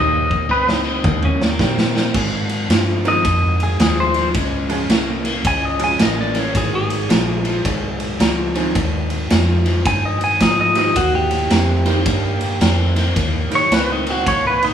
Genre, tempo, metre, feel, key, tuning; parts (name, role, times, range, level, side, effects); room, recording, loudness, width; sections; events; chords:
electric blues shuffle; 109 BPM; 4/4; swing 63% on 8ths; Ab major; A4 = 440 Hz
clean electric guitar; melody; 0.0-14.7 s; Bb3 to Ab5; -19 LUFS; equal; spring reverb
tack piano; accompaniment; 0.0-13.7 s; Eb3 to Bb4; -25 LUFS; right 5 dB
overdriven electric guitar; riff; 0.0-14.7 s; Ab2 to C4; -23 LUFS; left 2 dB
vintage muted fingered electric bass; bass; 0.0-14.7 s; Ab1 to Bb2; -22 LUFS; equal
raw garage drum kit; drums; 0.3-14.7 s; crash cymbal, kick drum, ride cymbal, snare drum, toms; -20 LUFS; right 1 dB
moderate large studio reverb, RT60 1.1 s; band playing live in one room; -15 LUFS; side -9 dB against mid
0.0-2.1 A section; 2.1-14.7 A section
drum fill 0.0-2.1; clean electric guitar solo 0.0-14.7
0.0 Eb; 2.1 Ab; 4.4 Db; 6.6 Ab; 11.0 Eb